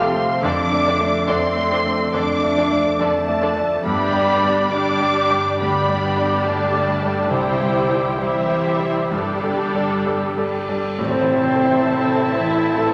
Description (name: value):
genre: cinematic, emotional film score for orchestra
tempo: 63-71 BPM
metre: 4/4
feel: rubato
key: unclear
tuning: A4 = 440 Hz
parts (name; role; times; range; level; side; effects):
- muted studio violin section; melody; 0.0-12.9 s; B4 to D6; -27 LUFS; equal; none
- muted symphonic violin section; second line; 0.0-12.9 s; G4 to A5; -27 LUFS; equal; none
- muted studio viola section; accompaniment; 0.0-12.9 s; D3 to E4; -28 LUFS; equal; none
- warm concert grand piano; accompaniment; 0.0-12.9 s; C2 to F5; -24 LUFS; equal; none
- concert harp; arpeggios; 0.0-12.9 s; F2 to F6; -33 LUFS; equal; none
- muted studio cello section; bass; 0.0-12.9 s; C3 to D4; -30 LUFS; equal; none
- muted studio double bass section; bass; 0.0-12.9 s; G1 to G2; -35 LUFS; equal; none
- cymbal swell and tam-tam; percussion; 7.3-12.9 s; none; -33 LUFS; equal; none
- bright large flute ensemble; second line; 11.0-12.9 s; C5 to A5; -27 LUFS; equal; none
- clear clarinet; second line; 11.0-12.9 s; C4 to A4; -32 LUFS; equal; none
- mellow French horn section; sustained chords; 11.0-12.9 s; C4 to A4; -21 LUFS; equal; none
room: wet concert hall reverb, RT60 2.2 s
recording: none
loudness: -19 LUFS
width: mono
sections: 0.0-11.0 A section; 11.0-12.9 B section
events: band accent 11.0-11.9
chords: 0.4 Dm/F; 3.8 G; 7.3 C; 9.1 Gsus2; 11.0 Amadd9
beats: | 0.43 1.28 2.14 2.99 | 3.85 4.72 5.59 6.45 | 7.31 8.20 9.12 10.07 | 10.99 11.87 12.78